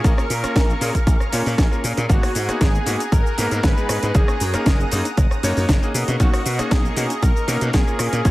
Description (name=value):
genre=nu-disco, nu disco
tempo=117 BPM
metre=4/4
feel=straight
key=unclear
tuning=A4 = 440 Hz
part: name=wide unison lead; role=melody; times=0.0-8.3 s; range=F#4 to C#5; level=-28 LUFS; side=equal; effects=tape echo
part: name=bright electric grand piano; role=accompaniment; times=0.0-8.3 s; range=G#3 to C#5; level=-26 LUFS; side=left 1 dB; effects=vintage 12-bit sampler grit, sidechain pumping, tape echo
part: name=lush unison pad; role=sustained chords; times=0.0-8.3 s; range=A#3 to D#6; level=-30 LUFS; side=right 1 dB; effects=chorus, sidechain pumping
part: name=glassy slap bass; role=bass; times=0.0-8.3 s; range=F#1 to B2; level=-22 LUFS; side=equal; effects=sidechain pumping
part: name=electronic kick drum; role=drums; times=0.0-8.3 s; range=none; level=-18 LUFS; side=equal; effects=overdrive
part: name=house drum kit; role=drums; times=0.0-8.3 s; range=hi-hat, rim click, shaker, snare drum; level=-26 LUFS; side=equal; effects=overdrive, tape echo
room=little or no reverb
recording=echo-heavy mix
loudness=-17 LUFS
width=side -18 dB against mid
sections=0.0-8.3 A section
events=none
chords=0.0 A#m7; 2.1 G#m9; 4.1 F#69; 5.9 Bmaj9